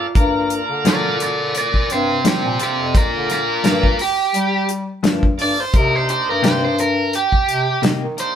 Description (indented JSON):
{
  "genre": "straight-eighth soul blues",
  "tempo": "86 BPM",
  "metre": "4/4",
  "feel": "swing 55% on 16ths",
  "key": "G minor",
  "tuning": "A4 = 436 Hz",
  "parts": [
    { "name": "electric guitar through a small old amp", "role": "second line", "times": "0.0-0.7 s", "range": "F4 to D5", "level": "-24 LUFS", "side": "left 5 dB", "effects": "none" },
    { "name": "bright tonewheel organ", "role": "accompaniment", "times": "0.0-8.4 s", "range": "Bb3 to Bb4", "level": "-25 LUFS", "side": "right 2 dB", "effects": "slow rotary speaker, overdrive" },
    { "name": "warm bass clarinet", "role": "bass", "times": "0.0-8.2 s", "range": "F2 to G3", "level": "-23 LUFS", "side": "left 2 dB", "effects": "none" },
    { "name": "damped 70s drum kit", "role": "drums", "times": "0.2-8.4 s", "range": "hi-hat, kick drum, snare drum", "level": "-18 LUFS", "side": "equal", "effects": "none" },
    { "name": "direct-recorded clean electric guitar", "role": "stabs", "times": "0.8-8.1 s", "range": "G2 to G4", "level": "-23 LUFS", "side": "left 3 dB", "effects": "none" },
    { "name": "biting overdriven guitar", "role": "melody", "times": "0.9-8.4 s", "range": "F4 to D5", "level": "-18 LUFS", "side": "right 2 dB", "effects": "none" }
  ],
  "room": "moderate studio reverb, RT60 0.8 s",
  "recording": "band playing live in one room",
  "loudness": "-15 LUFS",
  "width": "side -9 dB against mid",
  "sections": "0.0-8.4 A section",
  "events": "none",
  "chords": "0.0 Gm7; 5.7 Cm7",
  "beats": "| 0.15 0.85 1.55 2.25 | 2.95 3.64 4.34 5.04 | 5.74 6.43 7.13 7.83"
}